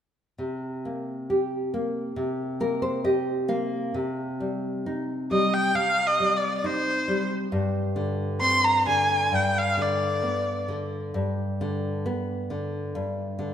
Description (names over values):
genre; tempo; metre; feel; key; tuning
fado; 67 BPM; 2/4; rubato; C minor; A4 = 437 Hz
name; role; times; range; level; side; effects
nylon-string guitar; accompaniment; 0.4-13.5 s; G2 to F5; -26 LUFS; equal; none
clear erhu; melody; 5.3-10.7 s; C5 to C6; -22 LUFS; equal; none
room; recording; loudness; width
wet scoring stage reverb, RT60 2.0 s; minimal, uncompressed stereo recording; -24 LUFS; side -9 dB against mid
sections
0.4-4.0 A section; 4.0-13.5 B section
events
nylon-string guitar fill 2.2-4.0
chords
0.4 C5; 4.0 Cm; 7.5 Gsus4; 9.3 G